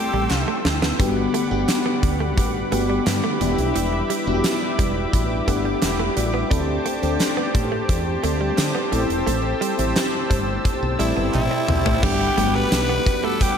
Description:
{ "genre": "1980s-style pop", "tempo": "87 BPM", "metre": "4/4", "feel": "straight", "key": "G major", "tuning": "A4 = 442 Hz", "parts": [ { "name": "growling tenor saxophone", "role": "melody", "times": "0.0-0.6, 11.0-13.6 s", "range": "E4 to B4", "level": "-24 LUFS", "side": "equal", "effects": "tape echo" }, { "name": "FM electric piano with soft pad layer", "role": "accompaniment", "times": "0.0-13.6 s", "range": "G3 to B5", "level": "-25 LUFS", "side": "left 2 dB", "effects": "chorus" }, { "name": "brassy analog pad", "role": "sustained chords", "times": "0.0-13.6 s", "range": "G3 to E6", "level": "-28 LUFS", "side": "equal", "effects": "chorus" }, { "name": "direct-recorded clean electric guitar", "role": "riff", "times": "0.0-13.4 s", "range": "E3 to D4", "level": "-30 LUFS", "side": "right 5 dB", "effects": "wide subtle chorus, tape echo" }, { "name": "woody fretless electric bass", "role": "bass", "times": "0.1-13.0 s", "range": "E1 to D3", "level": "-25 LUFS", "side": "equal", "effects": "none" }, { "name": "huge arena drum kit", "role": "drums", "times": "0.3-13.6 s", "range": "crash cymbal, hi-hat, kick drum, snare drum, tambourine, toms", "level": "-24 LUFS", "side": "equal", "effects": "none" }, { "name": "group handclap", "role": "percussion", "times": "0.3-11.5 s", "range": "none", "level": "barely audible", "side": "none", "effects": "none" }, { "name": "mellow synth brass", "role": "stabs", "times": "1.0-12.0 s", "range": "D3 to D5", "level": "-30 LUFS", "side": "left 1 dB", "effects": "chorus, tape echo" } ], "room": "moderate lush hall reverb, RT60 2.1 s", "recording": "dreamy mix soaked in reverb", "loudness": "-18 LUFS", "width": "side -7 dB against mid", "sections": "1.0-12.0 A section; 12.0-13.6 B section", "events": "drum fill 0.3-1.0, 11.3-12.0; FM electric piano fill 4.4-6.5, 10.7-12.0", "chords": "0.0 Am7; 1.0 Gmaj7; 3.4 Em7; 6.5 D7sus4; 8.9 Am7; 12.0 Gmaj7" }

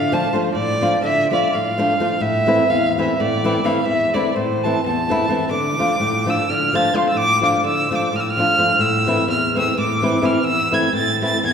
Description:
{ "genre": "balkan folk", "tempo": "254 BPM (eighths)", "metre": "7/8", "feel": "straight", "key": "unclear", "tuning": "A4 = 440 Hz", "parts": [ { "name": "clear violin", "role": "melody", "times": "0.0-11.5 s", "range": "C5 to A6", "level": "-19 LUFS", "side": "right 1 dB", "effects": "none" }, { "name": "flamenco guitar", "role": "accompaniment", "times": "0.0-11.5 s", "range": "E2 to F4", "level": "-18 LUFS", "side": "left 1 dB", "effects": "none" } ], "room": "wet concert hall reverb, RT60 1.9 s", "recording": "recorded in a church or concert hall", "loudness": "-16 LUFS", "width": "side -7 dB against mid", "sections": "0.0-5.5 A section; 5.5-11.5 A section", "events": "none", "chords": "0.0 Dm; 2.2 Am; 5.5 Dm; 8.8 Am" }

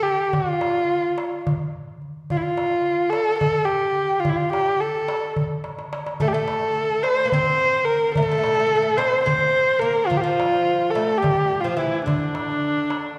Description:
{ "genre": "Turkish makam ensemble", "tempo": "215 BPM (eighths)", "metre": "7/8", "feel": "straight", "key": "unclear", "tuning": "A4 = 440 Hz", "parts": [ { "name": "dark kamancheh", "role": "melody", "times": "0.0-13.2 s", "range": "D4 to C5", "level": "-22 LUFS", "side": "equal", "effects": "none" }, { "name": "darbuka", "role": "percussion", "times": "0.1-13.1 s", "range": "none", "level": "-30 LUFS", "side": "equal", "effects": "none" }, { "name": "oud", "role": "second line", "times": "6.2-13.2 s", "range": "D3 to C4", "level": "-31 LUFS", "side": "equal", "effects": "none" } ], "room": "wet recital hall reverb, RT60 1.7 s", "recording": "recorded in a church or concert hall", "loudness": "-21 LUFS", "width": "mono", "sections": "0.0-13.2 A section", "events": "drum fill 5.6-6.2", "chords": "none" }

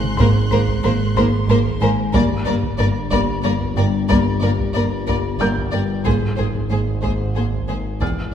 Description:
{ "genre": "cinematic, suspense film score", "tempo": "92 BPM", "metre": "3/4", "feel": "straight", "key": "unclear", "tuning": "A4 = 443 Hz", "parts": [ { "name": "marimba with hard mallets", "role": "riff", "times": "0.0-8.2 s", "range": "E2 to Ab3", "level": "-22 LUFS", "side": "left 1 dB", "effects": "none" }, { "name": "analog drone", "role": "drone", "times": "0.0-8.3 s", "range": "G1 to E2", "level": "-26 LUFS", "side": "equal", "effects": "chorus" }, { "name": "taiko ensemble", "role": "drums", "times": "0.0-8.3 s", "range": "none", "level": "-26 LUFS", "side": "equal", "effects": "none" }, { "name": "felt-muted upright piano", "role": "texture", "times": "0.0-2.2, 5.4-8.3 s", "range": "C5 to G6", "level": "-32 LUFS", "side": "left 1 dB", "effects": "none" }, { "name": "rich studio violin section", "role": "texture", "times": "0.0-1.8 s", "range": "C6 to F#6", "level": "-32 LUFS", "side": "left 1 dB", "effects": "none" }, { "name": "rich studio violin section", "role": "melody", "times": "0.2-8.1 s", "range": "C5 to D5", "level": "-28 LUFS", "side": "left 2 dB", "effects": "none" }, { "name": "rich studio violin section", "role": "second line", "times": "0.2-8.1 s", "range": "Ab4 to Bb4", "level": "-27 LUFS", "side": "left 1 dB", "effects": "none" }, { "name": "warm studio viola section", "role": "accompaniment", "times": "0.2-8.1 s", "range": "Bb3 to B3", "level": "-25 LUFS", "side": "equal", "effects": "none" }, { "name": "dark studio cello section", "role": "bass", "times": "0.2-8.1 s", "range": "E2 to Ab2", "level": "-26 LUFS", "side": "right 2 dB", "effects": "none" }, { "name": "rich studio double bass section", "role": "bass", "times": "0.2-8.1 s", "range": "E1 to Ab1", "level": "-26 LUFS", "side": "right 4 dB", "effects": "none" } ], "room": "wet scoring stage reverb, RT60 1.8 s", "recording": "minimal, uncompressed stereo recording", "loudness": "-16 LUFS", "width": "side -9 dB against mid", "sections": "0.0-8.3 A section", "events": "none", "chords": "0.0 Abadd9; 2.1 Gm; 6.1 Abadd9" }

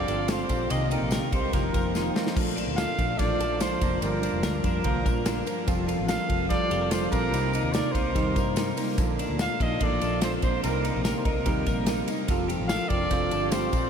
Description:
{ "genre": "jangly indie pop", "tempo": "145 BPM", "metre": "4/4", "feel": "straight", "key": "Bb major", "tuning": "A4 = 442 Hz", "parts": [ { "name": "warm trumpet", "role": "melody", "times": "0.0-13.9 s", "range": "Bb4 to F5", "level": "-30 LUFS", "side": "right 1 dB", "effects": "ping-pong delay" }, { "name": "vibraphone with hard mallets", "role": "second line", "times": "0.0-2.2, 9.4-13.9 s", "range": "Bb3 to F4", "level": "-38 LUFS", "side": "left 2 dB", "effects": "none" }, { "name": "fingerpicked plugged-in steel-string acoustic guitar", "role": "accompaniment", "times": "0.0-13.9 s", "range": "F2 to Bb4", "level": "-32 LUFS", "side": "right 7 dB", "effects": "none" }, { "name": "twelve-string electric guitar", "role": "arpeggios", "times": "0.0-13.9 s", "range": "G2 to Bb4", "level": "-30 LUFS", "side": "left 5 dB", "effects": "ping-pong delay" }, { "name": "vintage muted fingered electric bass", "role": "bass", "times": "0.0-13.9 s", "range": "F1 to G2", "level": "-32 LUFS", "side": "equal", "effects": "none" }, { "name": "modern studio drum kit", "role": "drums", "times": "0.1-13.8 s", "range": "crash cymbal, hi-hat, kick drum, ride cymbal, snare drum", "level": "-29 LUFS", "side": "equal", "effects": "none" }, { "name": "tambourine", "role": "percussion", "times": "0.1-13.8 s", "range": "none", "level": "-45 LUFS", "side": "left 10 dB", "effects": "none" } ], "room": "wet huge ambient reverb, RT60 8.1 s", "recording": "dreamy mix soaked in reverb", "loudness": "-23 LUFS", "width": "side -7 dB against mid", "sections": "0.0-2.4 A section; 2.4-13.9 A section", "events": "drum fill 2.0-2.4", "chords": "0.0 Fadd9; 0.7 Cm7; 1.5 F7sus4; 2.4 Bbmaj7; 4.0 Gm7; 5.7 Fadd9; 7.3 Cm7; 9.0 Bbmaj7; 10.6 Cm7; 12.3 Fadd9" }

